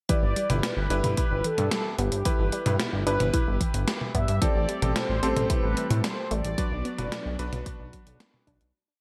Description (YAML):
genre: synthwave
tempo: 111 BPM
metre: 4/4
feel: straight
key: G major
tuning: A4 = 440 Hz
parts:
  - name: mellow synth brass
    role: melody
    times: 0.1-8.2 s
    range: G4 to E5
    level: -34 LUFS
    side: equal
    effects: chorus, digital delay
  - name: unison pluck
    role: arpeggios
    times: 0.1-8.6 s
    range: E3 to B4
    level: -38 LUFS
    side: equal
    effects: delay
  - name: bright electric grand piano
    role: stabs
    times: 0.1-8.7 s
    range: C4 to B4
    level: -35 LUFS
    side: equal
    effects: delay
  - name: electronic kick drum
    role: drums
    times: 0.1-8.6 s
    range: none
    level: -30 LUFS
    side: equal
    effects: none
  - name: gated 80s digital drum machine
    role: drums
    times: 0.1-8.7 s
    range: hi-hat, snare drum, toms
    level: -33 LUFS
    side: equal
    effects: gated reverb, gated reverb snare
  - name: chorused synth bass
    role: bass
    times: 0.2-8.7 s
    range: F#1 to A2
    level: -30 LUFS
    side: equal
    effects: sidechain pumping
  - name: analog string pad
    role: sustained chords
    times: 4.4-8.7 s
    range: F#3 to D4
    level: -39 LUFS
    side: equal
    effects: none
room: light reverb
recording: none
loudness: -26 LUFS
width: mono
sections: 0.1-8.7 verse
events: fade-out 5.9-8.7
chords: 0.1 G6; 4.4 Am7; 6.6 Bm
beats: | 0.09 0.63 1.17 1.72 | 2.25 2.80 3.34 3.88 | 4.42 4.96 5.50 6.04 | 6.58 7.12 7.66 8.20